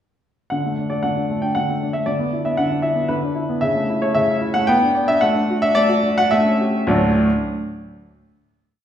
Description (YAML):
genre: classical-period piano sonatina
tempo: 101-117 BPM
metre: 3/4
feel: rubato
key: D major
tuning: A4 = 436 Hz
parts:
  - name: clear grand piano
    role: solo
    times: 0.5-7.3 s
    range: D2 to G5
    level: -17 LUFS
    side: equal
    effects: none
room: wet recital hall reverb, RT60 1.4 s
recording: minimal, uncompressed stereo recording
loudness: -17 LUFS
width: side -10 dB against mid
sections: 0.5-6.9 A section; 6.9-8.5 final chord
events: slowing down 2.8-6.9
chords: 0.5 D5; 2.1 E5/D; 3.6 A/C#; 4.7 G/B; 5.2 D/A; 6.3 A7; 6.9 D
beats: | 0.51 1.03 1.55 | 2.07 2.58 3.10 | 3.63 4.15 4.68 | 5.21 5.74 6.30 | 6.88